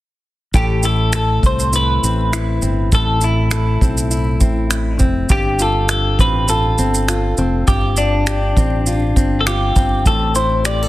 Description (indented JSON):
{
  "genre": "acoustic pop",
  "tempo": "101 BPM",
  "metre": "4/4",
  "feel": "swing 55% on 16ths",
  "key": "A minor",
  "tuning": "A4 = 441 Hz",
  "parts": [
    { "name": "fingerpicked plugged-in steel-string acoustic guitar", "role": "accompaniment", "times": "0.5-10.9 s", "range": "G2 to A4", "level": "-21 LUFS", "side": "left 2 dB", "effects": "none" },
    { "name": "fingered electric bass", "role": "bass", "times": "0.5-10.9 s", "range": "F1 to C2", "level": "-18 LUFS", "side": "equal", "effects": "none" },
    { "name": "unplugged drum kit", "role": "drums", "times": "0.5-10.8 s", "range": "finger snaps, kick drum, shaker", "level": "-18 LUFS", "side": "equal", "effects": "soft clipping on snare" },
    { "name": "twelve-string electric guitar", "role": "melody", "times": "0.6-10.9 s", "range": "D4 to D5", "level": "-20 LUFS", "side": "left 1 dB", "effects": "spring reverb" }
  ],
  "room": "small room ambience",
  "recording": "dense, heavily limited modern master",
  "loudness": "-14 LUFS",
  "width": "side -16 dB against mid",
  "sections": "0.5-10.9 A section",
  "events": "none",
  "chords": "0.5 Am; 5.3 G7sus4; 10.1 Am"
}